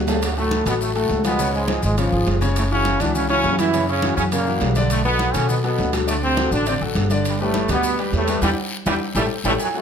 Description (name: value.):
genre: latin, salsa.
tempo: 205 BPM.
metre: 4/4.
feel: straight.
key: D major.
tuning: A4 = 440 Hz.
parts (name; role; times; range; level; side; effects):
clear baby grand piano; accompaniment; 0.0-9.8 s; C#3 to A5; -24 LUFS; left 4 dB; none.
upright bass; bass; 0.0-9.6 s; F#1 to B2; -23 LUFS; equal; none.
congas; percussion; 0.1-9.8 s; none; -29 LUFS; left 2 dB; none.
guiro; percussion; 0.1-9.8 s; none; -36 LUFS; left 4 dB; none.
maracas; percussion; 0.1-9.8 s; none; -34 LUFS; left 4 dB; none.
timbales and agogo bells; percussion; 0.1-9.8 s; none; -30 LUFS; right 7 dB; none.
brilliant trombone section; melody; 0.2-9.8 s; F#2 to E#4; -22 LUFS; right 2 dB; none.
room: moderate large studio reverb, RT60 0.8 s.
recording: none.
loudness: -18 LUFS.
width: side -7 dB against mid.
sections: 0.2-9.6 A section.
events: drum fill 0.0, 9.2-9.6; band accent 8.4-9.6.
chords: 0.2 D6; 1.4 C#7; 2.6 F#7(no3); 3.7 F#7; 4.9 Bm7; 6.1 D7; 7.3 G6; 8.4 Em7; 9.0 A5.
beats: | 0.23 0.52 0.81 1.10 | 1.40 1.69 1.98 2.27 | 2.56 2.86 3.15 3.44 | 3.73 4.03 4.32 4.61 | 4.91 5.20 5.49 5.79 | 6.08 6.37 6.67 6.96 | 7.25 7.54 7.84 8.13 | 8.43 8.72 9.01 9.30 | 9.60.